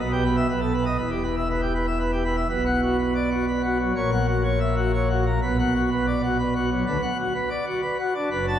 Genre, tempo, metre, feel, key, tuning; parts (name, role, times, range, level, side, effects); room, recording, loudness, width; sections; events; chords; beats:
classical, organ toccata; 123 BPM; 3/4; straight; B minor; A4 = 440 Hz
pipe organ, plenum; solo; 0.0-8.6 s; E1 to A5; -21 LUFS; equal
wet church reverb, RT60 3.2 s; heard from further back in the room; -21 LUFS; side -10 dB against mid
0.0-2.5 A section; 2.5-8.6 B section
0.0 Em/B; 0.5 B7; 1.0 Em; 2.5 Bm; 4.0 F#7/A#; 5.4 Bm; 6.9 Bm/D
0.01 0.50 | 1.00 1.50 2.00 | 2.50 2.99 3.47 | 3.96 4.45 4.94 | 5.43 5.91 6.39 | 6.87 7.36 7.84 | 8.32